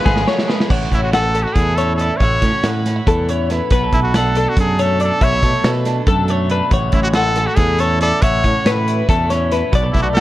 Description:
math rock and midwest emo; 279 BPM (eighths); 7/8; straight; A major; A4 = 440 Hz
brilliant trumpet; melody; 0.0-10.2 s; E4 to C#5; -20 LUFS; equal; digital delay
twelve-string electric guitar; accompaniment; 0.0-10.2 s; A2 to A4; -23 LUFS; right 6 dB
twelve-string electric guitar; arpeggios; 0.0-10.2 s; G#4 to F#5; -20 LUFS; left 4 dB; wide subtle chorus, digital delay
biting overdriven guitar; riff; 0.0-0.7 s; E#3 to G#4; -25 LUFS; equal
growling fingered electric bass; bass; 0.1-10.2 s; G#1 to B2; -19 LUFS; equal; overdrive
modern studio drum kit; drums; 0.1-10.2 s; crash cymbal, hi-hat, kick drum, snare drum; -18 LUFS; equal
light reverb; worn, warbling old tape, cassette tape, warbly pitch drift; -14 LUFS; side -15 dB against mid
0.7-10.2 A section
drum fill 0.0-0.7
0.0 C#7; 0.7 A6; 3.7 Bm7; 6.7 A6

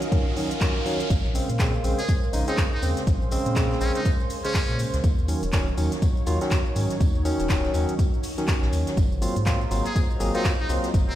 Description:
deep house; 122 BPM; 4/4; swing 59% on 16ths; Bb minor; A4 = 440 Hz
warm analog pad; sustained chords; 0.0-11.2 s; Gb3 to Eb5; -36 LUFS; equal; chorus, sidechain pumping
deep house drum kit; drums; 0.0-11.2 s; handclaps, hi-hat, shaker; -34 LUFS; equal; high-pass filter on hats, small room ambience, high-pass filter on snare, high-pass filter on perc
riser; sound effects; 0.0-1.1 s; -34 LUFS; right 1 dB
warbly tape-like pad; texture; 0.0-11.2 s; Eb4 to C6; -34 LUFS; right 1 dB; chorus, built-in reverb, sidechain pumping
barky tine electric piano; stabs; 0.1-10.9 s; Db3 to C5; -28 LUFS; equal; sidechain pumping, digital delay
electronic kick drum; drums; 0.1-11.1 s; -23 LUFS; equal; small room ambience
warm sub bass; bass; 1.1-11.2 s; Eb1 to Bb2; -26 LUFS; equal; sidechain pumping
jazz brush drum kit; drums; 1.1-11.1 s; hi-hat, snare drum, tambourine; -39 LUFS; left 1 dB; sidechain pumping on hats, high-pass filter on hats, small room ambience, high-pass filter on snare, sidechain pumping on perc, high-pass filter on perc, high-pass filter on room
trumpet with metal mute; melody; 2.0-4.8, 9.9-11.2 s; C4 to Ab4; -32 LUFS; equal; digital delay
light reverb, small room ambience; played on a big sound system in a bare room, stone room reverb; -21 LUFS; side -13 dB against mid
0.0-1.1 A section; 1.1-11.2 B section
build-up 0.0-1.1; riser 0.0-1.1; filter sweep on tine electric piano 0.0-1.1; drop 1.1-11.2
0.0 Ebm7; 1.1 Bbm9; 5.0 Ebm7; 9.0 Ab13

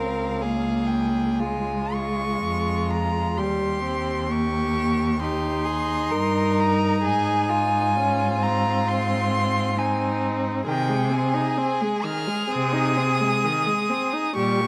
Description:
classical, slow romantic movement for string quartet; 65 BPM; 4/4; rubato; Ab major; A4 = 440 Hz
warm violin; melody; 0.0-14.7 s; F5 to F6; -29 LUFS; equal
clear violin; second line; 0.0-14.7 s; Eb4 to Bb4; -31 LUFS; equal
warm viola; accompaniment; 0.0-14.7 s; Eb3 to Eb4; -29 LUFS; equal
clear cello; bass; 0.0-14.7 s; Db2 to C3; -29 LUFS; equal
moderate recital hall reverb, RT60 1.4 s; close, detailed microphones; -23 LUFS; mono
0.0-14.7 A section
0.0 Dbmaj7; 3.4 Eb7; 7.0 Ab; 10.7 Ab/C

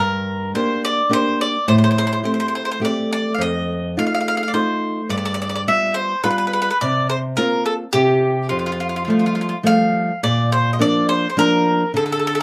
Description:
italian folk, Italian serenade; 105 BPM; 3/4; straight; F major; A4 = 440 Hz
mandolin; melody; 0.0-12.4 s; F4 to F5; -22 LUFS; equal
nylon-string guitar; accompaniment; 0.0-12.4 s; F2 to G4; -22 LUFS; equal
wet small room ambience, RT60 0.5 s; -19 LUFS; mono
0.0-10.2 A section; 10.2-12.4 B section
0.0 Gm; 1.7 Am7; 3.4 F7; 5.1 G7; 6.8 C7sus4; 7.9 N.C.; 8.5 Fadd9; 10.2 Bb

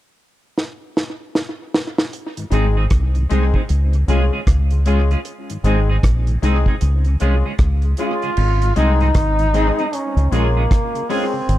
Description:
roots reggae; 77 BPM; 4/4; swing 62% on 16ths; Db major; A4 = 440 Hz
deep reggae drum kit; drums; 0.6-11.6 s; crash cymbal, hi-hat, kick drum, rim click, snare drum; -20 LUFS; equal; tape echo
mellow tonewheel organ; accompaniment; 2.4-11.4 s; Ab2 to F4; -28 LUFS; left 2 dB; slow rotary speaker, tape echo
clean electric guitar; accompaniment; 2.5-11.2 s; Ab3 to Ab4; -27 LUFS; right 4 dB; lush chorus, dub echo
bright grand piano; stabs; 2.5-11.3 s; Ab3 to Ab4; -26 LUFS; left 7 dB
deep dub fingered electric bass; bass; 2.5-11.6 s; Ab1 to Db2; -16 LUFS; equal
clear trombone; melody; 8.0-11.6 s; Bb3 to F4; -21 LUFS; equal; dub echo
little or no reverb; dark, warm production; -15 LUFS; side -14 dB against mid
0.0-2.1 A section; 2.1-8.4 B section; 8.4-11.6 C section
drum fill 0.6-2.1
0.0 N.C.; 2.1 Ab; 3.7 Db; 5.3 Ab; 6.8 Db; 8.4 Ab; 9.9 Db

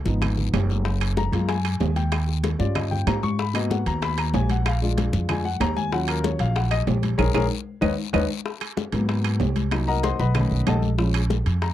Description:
Afro-Cuban jazz; 190 BPM; 4/4; straight; Eb minor; A4 = 442 Hz
warm baby grand piano; accompaniment; 0.1-11.7 s; D#3 to Db6; -27 LUFS; left 3 dB
upright bass; bass; 0.1-11.7 s; Gb1 to Ab2; -23 LUFS; equal
bongos; percussion; 0.1-11.7 s; -32 LUFS; left 7 dB
congas; percussion; 0.1-11.7 s; -30 LUFS; left 4 dB
guiro; percussion; 0.1-11.7 s; -40 LUFS; left 19 dB
claves; percussion; 0.2-11.3 s; -33 LUFS; right 21 dB
timbales; percussion; 0.2-11.7 s; -32 LUFS; right 10 dB
little or no reverb; dry, close 1970s-style studio recording; -21 LUFS; side -12 dB against mid
0.0-8.5 A section; 8.5-11.7 A section
grand piano solo 0.0-11.7; band accent 7.2-8.5; drum fill 8.0-8.5
0.0 Db7 (rootless); 0.9 Gbmaj7; 2.1 Eb7; 3.4 Abm7; 4.7 Bb7; 5.9 Ebm9; 7.2 Bbm7; 7.8 Badd9/D#; 8.5 Abm9; 9.7 Cm7b5; 10.4 B9; 11.0 Bbm7

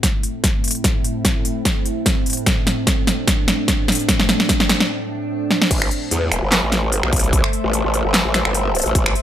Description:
heavy wobble dubstep; 148 BPM; 4/4; swing 54% on 16ths, half-time; A minor; A4 = 440 Hz
evolving wavetable pad; sustained chords; 0.0-9.2 s; A2 to E5; -24 LUFS; right 1 dB; chorus, built-in reverb, sidechain pumping
big-room dance drum kit; drums; 0.0-9.2 s; crash cymbal, finger snaps, handclaps, hi-hat, snare drum; -18 LUFS; equal; overdrive
electronic kick drum; drums; 0.0-9.0 s; -20 LUFS; equal
growl bass; bass; 5.7-9.1 s; E1 to E2; -19 LUFS; equal; distortion, chorus, overdrive
light reverb; -16 LUFS; side -11 dB against mid
0.0-5.7 A section; 5.7-9.2 B section
build-up 0.0-5.7; drum fill 0.0-4.9, 5.5; filter sweep on ambient pad 0.0-5.7; break 4.9-5.7; drop 5.7-9.2
0.0 Am

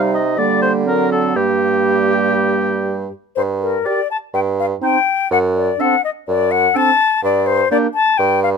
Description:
quick classical-period movement for wind quintet; 124 BPM; 4/4; straight; G minor; A4 = 437 Hz
concert flute; melody; 0.0-8.5 s; G4 to A5; -17 LUFS; left 7 dB
clear French horn; accompaniment; 0.0-7.9 s; F#3 to G4; -22 LUFS; right 1 dB
dark clarinet; accompaniment; 0.0-7.9 s; Bb3 to Bb4; -21 LUFS; right 12 dB
clear bassoon; bass; 0.0-8.6 s; F#2 to D3; -18 LUFS; right 4 dB
warm oboe; second line; 0.1-7.9 s; G4 to Eb5; -20 LUFS; left 1 dB
light reverb; close, detailed microphones; -14 LUFS; side -6 dB against mid
0.0-3.4 A section; 3.4-8.6 B section
0.4 Gm/D; 0.9 D7; 1.4 Gm; 4.3 Cm/G; 5.3 D7/F#; 7.2 Gm

